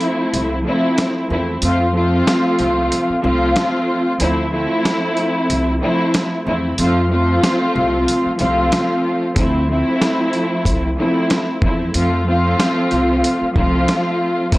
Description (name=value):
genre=hip hop, boom-bap hip-hop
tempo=93 BPM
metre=4/4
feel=swing 55% on 16ths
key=unclear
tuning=A4 = 440 Hz
part: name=warm studio string section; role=accompaniment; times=0.0-14.6 s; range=F3 to F4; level=-16 LUFS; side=equal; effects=high-pass filter, low-pass filter
part: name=dusty soul sampler-style drum kit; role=drums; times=0.0-14.6 s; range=hi-hat, kick drum, snare drum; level=-20 LUFS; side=equal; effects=none
part: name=upright bass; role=bass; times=0.3-14.6 s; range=C2 to F2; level=-21 LUFS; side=equal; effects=tube saturation
room=light reverb, small room ambience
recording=dry, gritty hardware recording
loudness=-15 LUFS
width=side -18 dB against mid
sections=0.0-14.6 A section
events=break 0.0-9.4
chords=0.0 Dm7 (rootless); 1.6 F; 4.2 Dm7; 6.8 F; 9.4 Dm7; 11.9 F